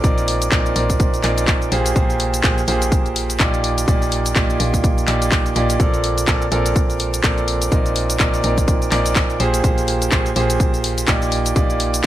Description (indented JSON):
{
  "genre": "piano house",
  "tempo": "125 BPM",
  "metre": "4/4",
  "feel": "swing 58% on 16ths",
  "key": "unclear",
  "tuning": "A4 = 440 Hz",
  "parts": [
    { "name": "clear grand piano", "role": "riff", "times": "0.0-12.1 s", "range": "Bb2 to D5", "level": "-20 LUFS", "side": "right 2 dB", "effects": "vintage 12-bit sampler grit, sidechain pumping, dub echo" },
    { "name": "solid FM bass", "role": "bass", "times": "0.0-12.1 s", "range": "Bb1", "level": "-23 LUFS", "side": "equal", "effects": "sidechain pumping" },
    { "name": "electronic kick drum", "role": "drums", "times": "0.0-12.1 s", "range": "none", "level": "-18 LUFS", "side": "equal", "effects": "none" },
    { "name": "house drum kit", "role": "drums", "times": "0.0-12.1 s", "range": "handclaps, hi-hat, shaker", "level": "-22 LUFS", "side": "left 1 dB", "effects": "none" }
  ],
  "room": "little or no reverb",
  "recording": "none",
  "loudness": "-15 LUFS",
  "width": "side -13 dB against mid",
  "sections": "0.0-12.1 A section",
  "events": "none",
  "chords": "0.0 Cm9/Bb; 1.7 Abmaj9/Bb; 3.6 Ebmaj7/Bb; 5.8 Bbmaj9; 7.7 Cm9/Bb; 9.4 Abmaj9/Bb; 11.3 Ebmaj7/Bb"
}